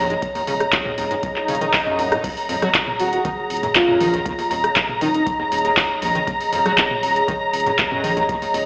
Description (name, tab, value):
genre	acid house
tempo	119 BPM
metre	4/4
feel	straight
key	unclear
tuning	A4 = 440 Hz
part	muted studio string section	sustained chords	0.0-8.7 s	Bb5	-22 LUFS	equal	sidechain pumping
part	acid bass, square	riff	0.0-8.6 s	Eb1 to Gb3	-28 LUFS	equal	overdrive, lush chorus, dub echo
part	round analog bass	bass	0.0-8.7 s	Eb1 to Bb1	-31 LUFS	equal	sidechain pumping
part	warbly tape-like pad	texture	0.0-8.7 s	Ab4 to Eb5	-26 LUFS	equal	chorus, built-in reverb, sidechain pumping
part	booming analog drum machine	drums	0.1-8.6 s	crash cymbal, handclaps, hi-hat, rim click, toms	-21 LUFS	equal	none
part	electronic kick drum	drums	0.2-8.4 s	none	-31 LUFS	equal	none
part	swell	sound effects	1.3-2.2 s	none	-25 LUFS	equal	none
part	breathy flute-like synth lead	melody	3.0-5.2 s	Eb4 to Gb4	-21 LUFS	equal	wide subtle chorus, dub echo
room	moderate plate reverb, RT60 1.9 s, digital ambience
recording	played on a big sound system in a bare room, stone room reverb, AM radio sound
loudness	-17 LUFS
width	side -25 dB against mid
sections	0.0-2.2 A section; 2.2-8.7 B section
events	swell 1.3-2.2; drop 2.2-8.7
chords	0.0 Eb5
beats	| 0.22 0.73 1.23 1.74 | 2.24 2.75 3.25 3.75 | 4.26 4.76 5.27 5.77 | 6.27 6.78 7.28 7.79 | 8.29